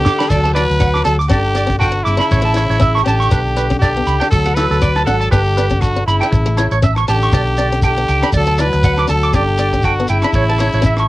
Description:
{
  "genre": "highlife guitar band",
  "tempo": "120 BPM",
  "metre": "4/4",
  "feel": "swing 55% on 16ths",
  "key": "D major",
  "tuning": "A4 = 438 Hz",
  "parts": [
    { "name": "growling trumpet", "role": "melody", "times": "0.0-11.1 s", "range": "E4 to B4", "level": "-19 LUFS", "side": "equal", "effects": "cassette tape" },
    { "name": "breathy trombone", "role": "second line", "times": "0.0-11.1 s", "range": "C#3 to F#3", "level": "-24 LUFS", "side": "left 3 dB", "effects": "cassette tape" },
    { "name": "picked acoustic archtop guitar", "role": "accompaniment", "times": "0.0-11.0 s", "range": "A3 to E4", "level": "-23 LUFS", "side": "left 4 dB", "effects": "cassette tape" },
    { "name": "clean electric guitar", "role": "arpeggios", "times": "0.0-11.1 s", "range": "A4 to D6", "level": "-19 LUFS", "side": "right 4 dB", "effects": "lush chorus, cassette tape" },
    { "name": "hollow-body short-scale fingered electric bass", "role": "bass", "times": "0.0-11.1 s", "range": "G1 to D2", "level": "-17 LUFS", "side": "equal", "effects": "none" },
    { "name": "tight funk drum kit", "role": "drums", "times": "0.1-11.1 s", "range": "crash cymbal, hi-hat, kick drum, rim click, snare drum", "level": "-23 LUFS", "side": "equal", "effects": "cassette tape" },
    { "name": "shekere", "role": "percussion", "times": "0.1-11.0 s", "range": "none", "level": "-17 LUFS", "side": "equal", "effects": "none" },
    { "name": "agogo bells", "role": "percussion", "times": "0.2-11.1 s", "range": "none", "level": "-30 LUFS", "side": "left 5 dB", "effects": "none" }
  ],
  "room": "light reverb",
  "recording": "home recording on cassette",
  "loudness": "-12 LUFS",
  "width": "side -17 dB against mid",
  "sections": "0.3-11.1 A section",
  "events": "drum fill 0.0-0.3",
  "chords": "0.3 D; 1.3 G; 2.3 A; 3.3 G/B; 4.3 D; 5.3 G; 6.3 A; 7.3 G/B; 8.3 D; 9.3 G; 10.3 A"
}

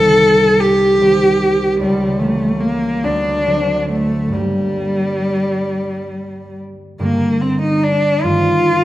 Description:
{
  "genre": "classical, romantic duo for cello and harp",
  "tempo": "44-50 BPM (dotted quarters)",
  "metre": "6/8",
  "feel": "rubato",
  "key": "G minor",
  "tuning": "A4 = 441 Hz",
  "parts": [
    { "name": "rich cello", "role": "melody", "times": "0.0-8.8 s", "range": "G3 to A4", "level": "-14 LUFS", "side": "equal", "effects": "none" },
    { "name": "concert harp", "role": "accompaniment", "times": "0.0-8.8 s", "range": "C2 to C4", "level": "-19 LUFS", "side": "right 1 dB", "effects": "none" }
  ],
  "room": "wet recital hall reverb, RT60 1.4 s",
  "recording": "none",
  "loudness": "-13 LUFS",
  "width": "side -14 dB against mid",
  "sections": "0.0-7.0 A section; 7.0-8.8 A section",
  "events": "none",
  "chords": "0.0 Cm; 1.8 C#dim7; 3.0 D7; 4.3 Gm; 8.3 Am7b5/G"
}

